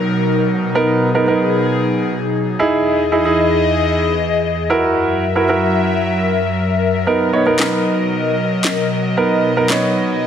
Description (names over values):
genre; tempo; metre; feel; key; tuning
dance-pop; 114 BPM; 4/4; straight; B major; A4 = 442 Hz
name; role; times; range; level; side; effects
airy breathy pad; sustained chords; 0.0-10.3 s; E2 to E5; -17 LUFS; left 2 dB; chorus
warm grand piano; accompaniment; 0.8-10.3 s; B3 to C#5; -16 LUFS; right 2 dB; none
electronic snare drum and handclaps; drums; 7.6-9.8 s; none; -21 LUFS; left 1 dB; overdrive
room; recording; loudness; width
light reverb, studio ambience; none; -14 LUFS; side -8 dB against mid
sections
0.0-10.3 A section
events
none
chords
0.0 Bmaj7; 2.6 Emaj7; 4.7 F#7; 7.1 Bmaj7